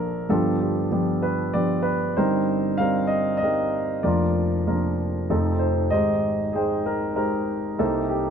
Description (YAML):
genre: acoustic folk-pop ballad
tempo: 96 BPM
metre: 3/4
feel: straight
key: unclear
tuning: A4 = 441 Hz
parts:
  - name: warm grand piano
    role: solo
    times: 0.0-8.3 s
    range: F1 to G5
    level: -21 LUFS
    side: equal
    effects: none
room: little or no reverb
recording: dark, warm production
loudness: -21 LUFS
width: side -7 dB against mid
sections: 0.0-8.3 A section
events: none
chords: 0.3 G7; 2.2 Cm7/G; 4.0 Bb/F; 5.3 F7; 5.9 Abmaj7